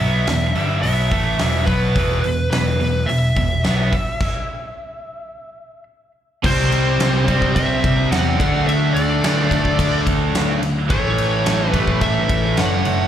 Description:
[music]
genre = hard rock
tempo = 107 BPM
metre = 4/4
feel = straight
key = unclear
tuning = A4 = 440 Hz
[part]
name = smooth overdriven lead guitar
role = melody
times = 0.0-13.1 s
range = B4 to F#5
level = -23 LUFS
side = equal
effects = slapback echo, tape echo
[part]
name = distorted electric guitar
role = riff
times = 0.0-13.1 s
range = E2 to D4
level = -27 LUFS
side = left 11 dB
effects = overdrive, slapback echo
[part]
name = tight distorted guitar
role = riff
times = 0.0-13.1 s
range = E2 to D4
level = -24 LUFS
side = right 10 dB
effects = distortion, slapback echo
[part]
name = picked electric bass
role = bass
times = 0.0-13.1 s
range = E1 to E2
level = -20 LUFS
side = equal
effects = none
[part]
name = huge arena drum kit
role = drums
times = 0.3-13.0 s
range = crash cymbal, hi-hat, kick drum, ride cymbal, snare drum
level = -22 LUFS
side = equal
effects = none
[part]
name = cranked stack guitar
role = riff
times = 6.4-13.1 s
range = A2 to D4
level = -24 LUFS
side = left 1 dB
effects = overdrive, slapback echo
[part]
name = fuzz lead guitar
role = second line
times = 6.5-13.1 s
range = G4 to D5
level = -30 LUFS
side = right 2 dB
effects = distortion, slapback echo
[sound]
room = little or no reverb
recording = live gig heard through the venue's PA, club reverb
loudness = -16 LUFS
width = side -10 dB against mid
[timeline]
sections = 0.0-6.4 A section; 6.4-13.1 B section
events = stop 4.2-6.4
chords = 0.0 E5; 6.4 C; 8.4 D5; 10.9 A

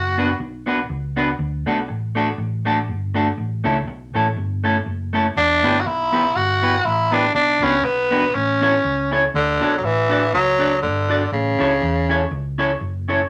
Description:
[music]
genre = ska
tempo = 121 BPM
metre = 4/4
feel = swing 56% on 8ths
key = D major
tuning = A4 = 440 Hz
[part]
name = raspy tenor saxophone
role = melody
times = 0.0-0.4, 5.4-12.3 s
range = C#3 to F#4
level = -20 LUFS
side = equal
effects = none
[part]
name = hollow-body short-scale fingered electric bass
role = bass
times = 0.0-13.2 s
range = E1 to E2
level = -28 LUFS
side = equal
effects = none
[part]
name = clean electric guitar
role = accompaniment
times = 0.2-13.2 s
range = A3 to D5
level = -22 LUFS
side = equal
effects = tape echo
[sound]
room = moderate studio reverb, RT60 0.5 s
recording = none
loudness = -20 LUFS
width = mono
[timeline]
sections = 0.0-9.3 A section; 9.3-13.3 A section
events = none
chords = 0.0 Bm; 1.4 D; 3.4 A; 5.4 Em; 7.4 Bm; 8.3 A; 9.3 D; 11.3 A

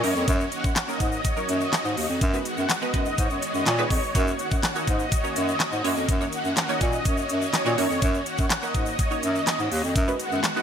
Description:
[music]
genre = dance-pop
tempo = 124 BPM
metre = 4/4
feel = straight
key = F# major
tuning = A4 = 443 Hz
[part]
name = supersaw pad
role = melody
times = 0.0-10.6 s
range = C#5 to F#5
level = -29 LUFS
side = equal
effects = ensemble chorus
[part]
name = wide unison pluck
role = accompaniment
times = 0.0-10.6 s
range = F#3 to C#5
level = -32 LUFS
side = right 2 dB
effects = ensemble chorus, sidechain pumping
[part]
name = string machine, violas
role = sustained chords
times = 0.0-10.6 s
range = D#3 to F#4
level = -33 LUFS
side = equal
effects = ensemble chorus, sidechain pumping
[part]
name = warm bass clarinet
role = bass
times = 0.0-10.4 s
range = D#2 to A#2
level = -26 LUFS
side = equal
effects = sidechain pumping
[part]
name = pop drum kit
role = drums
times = 0.0-10.6 s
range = handclaps, hi-hat, kick drum, snare drum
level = -25 LUFS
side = equal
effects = none
[part]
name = tube shaker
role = percussion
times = 0.2-10.6 s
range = none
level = -40 LUFS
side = left 12 dB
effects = none
[sound]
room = light reverb, digital ambience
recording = bright 1980s-style digital production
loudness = -22 LUFS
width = side -8 dB against mid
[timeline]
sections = 0.0-10.6 A section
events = none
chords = 0.0 F#6; 2.2 B6/F#; 4.1 F#6; 5.8 D#m7; 7.8 F#6; 10.0 B6/F#

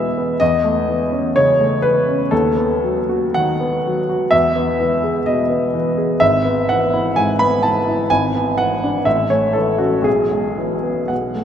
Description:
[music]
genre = classical, romantic character piece for solo piano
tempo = 54-64 BPM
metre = 2/4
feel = rubato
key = E major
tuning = A4 = 440 Hz
[part]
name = warm baby grand piano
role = solo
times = 0.0-11.4 s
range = G#1 to B5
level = -15 LUFS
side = equal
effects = none
[sound]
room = wet cathedral reverb, RT60 5.1 s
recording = in a vast, echoing space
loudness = -15 LUFS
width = side -9 dB against mid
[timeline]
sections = 0.0-11.4 A section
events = none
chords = 0.4 A/E; 2.3 B7/D#; 4.3 E; 6.2 E/G#; 8.1 E7/G#; 9.1 A; 10.1 E/B

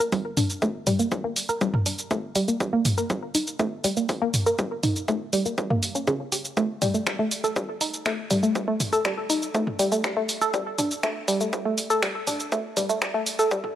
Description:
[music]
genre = melodic techno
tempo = 121 BPM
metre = 4/4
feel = straight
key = G minor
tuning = A4 = 440 Hz
[part]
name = woody wave-folded pluck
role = arpeggios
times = 0.0-13.6 s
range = Db3 to Bb4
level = -24 LUFS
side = equal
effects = chorus, sidechain pumping, analog delay
[part]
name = punchy analog drum machine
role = drums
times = 0.0-13.7 s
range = finger snaps, hi-hat, shaker, toms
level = -27 LUFS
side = equal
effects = sidechain pumping on perc, studio reverb, sidechain pumping on hats, sidechain pumping on toms
[part]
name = electronic kick drum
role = drums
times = 0.1-13.6 s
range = none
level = -30 LUFS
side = equal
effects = high-pass filter on kick, studio reverb
[sound]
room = light reverb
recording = dry, gritty hardware recording, high-pass filter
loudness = -23 LUFS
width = side -11 dB against mid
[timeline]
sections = 0.0-13.8 A section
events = build-up 0.0-13.8; filter sweep on synth pluck 0.0-13.8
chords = none

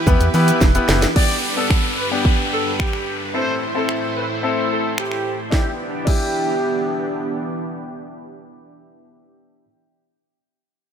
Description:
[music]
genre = dance-pop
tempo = 110 BPM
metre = 4/4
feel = straight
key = E minor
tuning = A4 = 440 Hz
[part]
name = supersaw pad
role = sustained chords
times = 0.0-9.1 s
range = G2 to C5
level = -26 LUFS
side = right 1 dB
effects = lush chorus, sidechain pumping, low-pass filter
[part]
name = bright concert grand piano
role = accompaniment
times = 0.1-9.7 s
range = B3 to B4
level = -23 LUFS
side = left 3 dB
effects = sidechain pumping, low-pass filter
[part]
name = organ-like FM bass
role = bass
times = 0.1-1.1 s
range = E1 to E3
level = -18 LUFS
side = right 1 dB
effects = sidechain pumping
[part]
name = house drum kit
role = drums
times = 0.1-6.2 s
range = crash cymbal, finger snaps, hi-hat, kick drum, shaker, snare drum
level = -18 LUFS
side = right 1 dB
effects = none
[part]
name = warm horn section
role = melody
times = 1.2-7.1 s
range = G4 to D5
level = -25 LUFS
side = right 2 dB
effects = sidechain pumping, low-pass filter, ping-pong delay
[part]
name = downlifter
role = sound effects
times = 1.2-5.5 s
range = none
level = -27 LUFS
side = left 1 dB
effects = none
[sound]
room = moderate lush hall reverb, RT60 2.1 s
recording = bright 1980s-style digital production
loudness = -17 LUFS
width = side -8 dB against mid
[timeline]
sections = 0.0-1.2 A section; 1.2-5.5 B section; 5.5-9.9 C section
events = drum fill 0.6-1.2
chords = 0.0 Em; 1.2 G; 3.3 Am; 5.5 Em7

